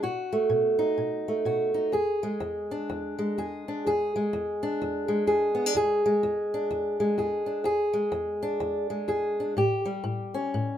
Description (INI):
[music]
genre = blues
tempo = 126 BPM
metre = 4/4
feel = swing 61% on 8ths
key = E mixolydian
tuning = A4 = 439 Hz
[part]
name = fingerpicked old ladder-braced acoustic guitar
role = solo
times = 0.0-10.8 s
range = E2 to G#4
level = -25 LUFS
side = equal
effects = none
[sound]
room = light reverb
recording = minimal, uncompressed stereo recording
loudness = -25 LUFS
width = side -10 dB against mid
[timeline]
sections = 0.0-1.9 A section; 1.9-10.8 B section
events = none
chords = 0.0 B7; 1.9 E7; 9.6 A7